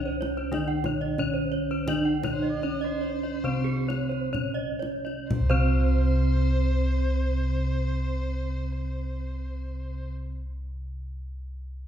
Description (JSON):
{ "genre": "Balinese gamelan", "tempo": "59-100 BPM", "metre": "4/4", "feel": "straight", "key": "unclear", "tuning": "A4 = 440 Hz", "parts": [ { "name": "gamelan-type bronze metallophone", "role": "melody", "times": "0.0-10.3 s", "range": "C4 to D4+50c", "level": "-31 LUFS", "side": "right 4 dB", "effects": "none" }, { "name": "warm erhu", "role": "second line", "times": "0.0-10.1 s", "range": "C5 to D5+50c", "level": "-39 LUFS", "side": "left 2 dB", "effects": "none" }, { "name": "gamelan-type bronze metallophone", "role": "accompaniment", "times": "0.0-10.3 s", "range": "C3 to D3+50c", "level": "-35 LUFS", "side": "left 1 dB", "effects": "none" }, { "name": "gamelan-type bronze metallophone", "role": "arpeggios", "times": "0.0-10.3 s", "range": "C5 to D5+50c", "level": "-36 LUFS", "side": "left 6 dB", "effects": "none" }, { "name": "gamelan-type bossed gongs", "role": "bass", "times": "0.0-10.2 s", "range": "C2 to D4+50c", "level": "-28 LUFS", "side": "equal", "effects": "none" }, { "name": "gamelan-type bronze metallophone", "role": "arpeggios", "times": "0.1-10.3 s", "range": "Ab4-40c to G5-45c", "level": "-35 LUFS", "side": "right 5 dB", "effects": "none" }, { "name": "kendang", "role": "percussion", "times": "0.2-5.8 s", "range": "none", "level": "-35 LUFS", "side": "left 2 dB", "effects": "none" } ], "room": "wet recital hall reverb, RT60 1.5 s", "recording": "heard from further back in the room", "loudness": "-25 LUFS", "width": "side -9 dB against mid", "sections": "0.0-5.3 A section; 5.3-9.4 B section", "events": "slowing down 0.0-5.3", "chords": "none" }